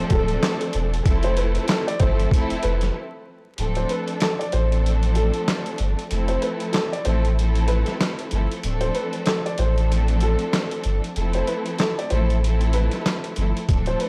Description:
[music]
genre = hip hop, boom-bap hip-hop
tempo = 95 BPM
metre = 4/4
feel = swing 58% on 16ths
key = D dorian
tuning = A4 = 440 Hz
[part]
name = dark upright piano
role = melody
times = 0.0-14.1 s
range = A4 to D5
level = -30 LUFS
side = equal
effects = high-pass filter, low-pass filter, tape echo
[part]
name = warm studio string section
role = accompaniment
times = 0.0-14.1 s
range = F3 to A4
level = -30 LUFS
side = equal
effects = high-pass filter, low-pass filter
[part]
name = warm sub bass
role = bass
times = 0.0-13.9 s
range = D1 to A1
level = -24 LUFS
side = equal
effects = none
[part]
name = boom bap sampler-style drum kit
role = drums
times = 0.1-14.1 s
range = handclaps, hi-hat, kick drum, snare drum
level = -28 LUFS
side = equal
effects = none
[sound]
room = digital ambience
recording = dry, gritty hardware recording, transformer saturation, vinyl crackle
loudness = -22 LUFS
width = mono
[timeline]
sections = 0.0-3.6 A section; 3.6-14.1 B section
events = break 3.0-3.6; kick muted 3.6-13.7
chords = 0.0 Dm7; 1.1 Fmaj7; 3.6 Dm7; 6.1 Fmaj7; 8.6 Dm7; 11.2 Fmaj7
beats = 0.42 | 1.06 1.69 2.32 2.95 | 3.58 4.21 4.84 5.48 | 6.11 6.74 7.37 8.00 | 8.63 9.27 9.90 10.53 | 11.16 11.79 12.42 13.06 | 13.69

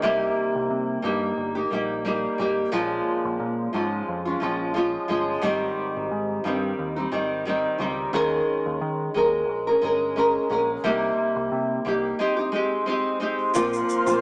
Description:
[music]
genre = indie pop, bedroom pop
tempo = 89 BPM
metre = 4/4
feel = swing 55% on 16ths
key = Bb dorian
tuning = A4 = 440 Hz
[part]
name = nylon-string guitar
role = accompaniment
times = 0.0-14.2 s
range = Ab2 to Bb4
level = -25 LUFS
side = equal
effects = lush chorus, vibrato effect
[part]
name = deep dub picked electric bass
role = bass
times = 0.0-14.2 s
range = G1 to Eb3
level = -35 LUFS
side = equal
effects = none
[part]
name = ethereal airy pad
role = sustained chords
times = 13.5-14.2 s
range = Bb4 to C6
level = -28 LUFS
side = equal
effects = ensemble chorus, built-in reverb
[part]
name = egg shaker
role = percussion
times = 13.5-14.2 s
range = none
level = -41 LUFS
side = equal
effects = none
[sound]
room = light reverb, small room ambience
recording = small speaker sound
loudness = -25 LUFS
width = mono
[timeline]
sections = 0.0-13.5 A section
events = none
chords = 0.0 Cm7; 2.7 Bbm7; 5.4 Abmaj7; 8.1 Eb7sus4; 10.8 Cm7; 12.2 Abmaj7; 13.5 Bbsus2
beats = | 0.03 0.71 1.38 2.06 | 2.73 3.41 4.08 4.76 | 5.43 6.11 6.79 7.46 | 8.14 8.81 9.49 10.17 | 10.84 11.52 12.19 12.87 | 13.54

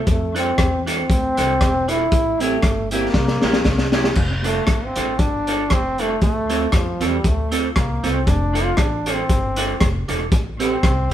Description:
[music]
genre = ska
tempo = 117 BPM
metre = 4/4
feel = swing 54% on 8ths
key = F major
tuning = A4 = 440 Hz
[part]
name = breathy trombone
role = melody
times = 0.0-3.9 s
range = A3 to E4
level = -21 LUFS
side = equal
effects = none
[part]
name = upright bass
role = bass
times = 0.1-11.1 s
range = E1 to F2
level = -25 LUFS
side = equal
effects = none
[part]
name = crunchy breakbeat drum kit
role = drums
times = 0.1-11.1 s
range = crash cymbal, hi-hat, kick drum, rim click, snare drum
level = -20 LUFS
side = equal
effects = none
[part]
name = electric guitar through a small old amp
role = accompaniment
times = 0.3-11.1 s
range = Bb3 to A4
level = -24 LUFS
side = right 4 dB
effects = none
[part]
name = bright trombone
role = melody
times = 4.5-11.1 s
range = F3 to F4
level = -24 LUFS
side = left 1 dB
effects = none
[sound]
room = light reverb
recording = band playing live in one room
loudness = -17 LUFS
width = side -11 dB against mid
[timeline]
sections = 0.0-4.2 A section; 4.2-11.1 B section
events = drum fill 3.1-4.2; trombone solo 4.2-11.1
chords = 0.1 F6; 2.1 Am7; 3.1 C7; 4.2 F6; 6.2 Dm7; 8.3 F6; 10.3 Am7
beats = | 0.07 0.58 1.09 1.61 | 2.12 2.63 3.15 3.66 | 4.17 4.68 5.20 5.71 | 6.22 6.73 7.25 7.76 | 8.27 8.78 9.29 9.81 | 10.32 10.83

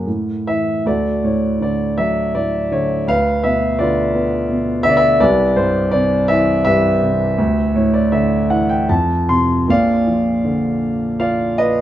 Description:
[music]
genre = classical, lyrical solo piano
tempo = 74-85 BPM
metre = 3/4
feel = rubato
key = D major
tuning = A4 = 436 Hz
[part]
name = dark concert grand piano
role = solo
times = 0.0-11.8 s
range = Bb1 to C6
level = -14 LUFS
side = equal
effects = none
[sound]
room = light reverb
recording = close, detailed microphones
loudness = -14 LUFS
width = side -12 dB against mid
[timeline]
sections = 0.9-9.7 A section; 9.7-11.8 B section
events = grand piano fill 7.4-9.7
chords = 0.1 A5; 0.9 D; 3.1 Dm69; 5.2 Cmaj7; 7.4 Dsus2; 8.9 F; 9.7 Bb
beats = 0.07 | 0.85 1.61 2.35 | 3.08 3.80 4.50 | 5.21 5.93 6.66 | 7.39 8.12 8.90 | 9.68 10.45 11.20

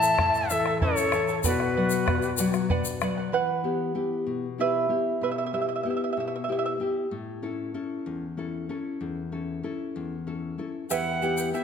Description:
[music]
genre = andean folk, Andean ensemble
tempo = 63 BPM (dotted quarters)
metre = 6/8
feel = straight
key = unclear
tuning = A4 = 441 Hz
[part]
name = reedy quena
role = melody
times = 0.0-2.7, 10.9-11.6 s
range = B4 to A5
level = -26 LUFS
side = equal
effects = none
[part]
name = bright large quena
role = second line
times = 0.0-2.7 s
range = F#4 to E5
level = -29 LUFS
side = left 5 dB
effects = none
[part]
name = charango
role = accompaniment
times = 0.0-6.7, 10.9-11.6 s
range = E4 to A5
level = -29 LUFS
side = right 5 dB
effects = none
[part]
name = nylon-string guitar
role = accompaniment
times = 0.0-11.6 s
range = E2 to A4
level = -29 LUFS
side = left 4 dB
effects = none
[part]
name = egg shaker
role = percussion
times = 0.0-3.1, 10.9-11.6 s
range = none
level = -34 LUFS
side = left 8 dB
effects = none
[part]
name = bombo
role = percussion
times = 0.2-3.2 s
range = none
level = -30 LUFS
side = equal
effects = none
[sound]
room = wet scoring stage reverb, RT60 1.8 s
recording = none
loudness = -25 LUFS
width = side -7 dB against mid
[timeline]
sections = 0.0-3.3 A section; 3.3-10.9 B section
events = charango solo 3.3-10.9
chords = 0.0 A; 1.4 Bm; 3.3 Em; 7.1 A; 10.9 Em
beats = 0.49 | 1.44 2.38 | 3.33 4.28 | 5.22 6.17 | 7.12 8.06 | 9.01 9.96 | 10.91

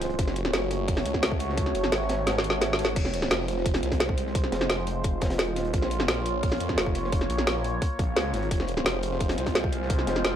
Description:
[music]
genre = dark technical drum and bass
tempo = 173 BPM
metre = 4/4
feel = straight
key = F phrygian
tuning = A4 = 440 Hz
[part]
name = sweeping resonant pad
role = sustained chords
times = 0.0-10.4 s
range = Ab3 to Db5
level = -31 LUFS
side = right 1 dB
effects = chorus, phaser, sidechain pumping
[part]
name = snarling distorted saw bass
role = bass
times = 0.0-10.4 s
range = F1 to F2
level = -30 LUFS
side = equal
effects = distortion, tube saturation
[part]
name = crunchy breakbeat drum kit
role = drums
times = 0.0-10.4 s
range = hi-hat, snare drum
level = -36 LUFS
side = equal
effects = high-pass filter on hats, high-pass filter on snare, high-pass filter on room
[part]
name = drum and bass drum kit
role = drums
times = 0.0-10.3 s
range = crash cymbal, hi-hat, snare drum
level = -27 LUFS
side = equal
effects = none
[part]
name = electronic kick drum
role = drums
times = 0.2-10.0 s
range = none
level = -28 LUFS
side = equal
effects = none
[sound]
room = light reverb, digital ambience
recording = faint mains hum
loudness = -24 LUFS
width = side -10 dB against mid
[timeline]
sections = 0.0-10.4 A section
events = kick drops out 2.3-3.0; drum fill 2.3-3.0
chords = 0.2 Gbm; 3.0 Fm; 5.7 Bbm; 8.5 Fm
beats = | 0.19 0.54 0.88 1.23 | 1.57 1.92 2.27 2.62 | 2.96 3.31 3.66 4.00 | 4.35 4.70 5.04 5.39 | 5.74 6.08 6.43 6.78 | 7.12 7.47 7.82 8.16 | 8.51 8.86 9.21 9.55 | 9.90 10.25

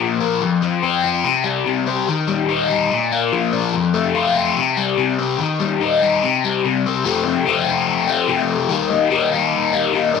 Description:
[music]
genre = rock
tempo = 144 BPM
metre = 4/4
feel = straight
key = F major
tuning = A4 = 438 Hz
[part]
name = overdriven electric guitar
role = solo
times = 0.0-10.2 s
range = F2 to F4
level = -16 LUFS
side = left 6 dB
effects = phaser, slapback echo
[sound]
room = wet spring reverb, RT60 1.3 s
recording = none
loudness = -16 LUFS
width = side -5 dB against mid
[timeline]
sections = 0.0-7.1 A section; 7.1-10.2 B section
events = none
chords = 0.4 F5; 1.3 C5; 2.1 Eb; 2.9 Bb; 3.8 F; 4.6 C5; 5.4 Eb; 6.2 C5; 7.1 F; 8.7 Eb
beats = 0.01 | 0.42 0.84 1.25 1.67 | 2.09 2.50 2.92 3.33 | 3.75 4.17 4.58 5.00 | 5.41 5.83 6.24 6.66 | 7.07 7.48 7.90 8.31 | 8.72 9.13 9.54 9.95

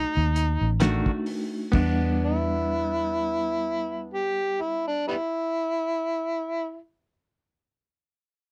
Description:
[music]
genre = straight-eighth soul blues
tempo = 63 BPM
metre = 4/4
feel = swing 56% on 16ths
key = E minor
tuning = A4 = 440 Hz
[part]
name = overdriven harmonica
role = melody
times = 0.0-6.8 s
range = G3 to G4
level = -29 LUFS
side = equal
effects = none
[part]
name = reed electric piano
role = accompaniment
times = 0.0-5.1 s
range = G3 to F#5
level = -33 LUFS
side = equal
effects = fast tremolo
[part]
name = vintage muted fingered electric bass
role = bass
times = 0.0-5.1 s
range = A1 to E2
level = -28 LUFS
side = equal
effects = none
[part]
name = cloth-damped thuddy drum kit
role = drums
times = 0.4-2.0 s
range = crash cymbal, hi-hat, kick drum, snare drum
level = -29 LUFS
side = equal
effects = none
[part]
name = direct-recorded clean electric guitar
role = stabs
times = 0.8-5.2 s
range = D#3 to F#4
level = -36 LUFS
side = equal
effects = spring reverb
[sound]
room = little or no reverb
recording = dry, close 1970s-style studio recording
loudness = -26 LUFS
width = mono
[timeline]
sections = 0.0-1.7 A section; 1.7-5.5 B section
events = slowing down 0.0-1.7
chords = 0.0 B7#9 (rootless); 1.7 Em7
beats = 0.81 | 1.74 2.69 3.63 4.58

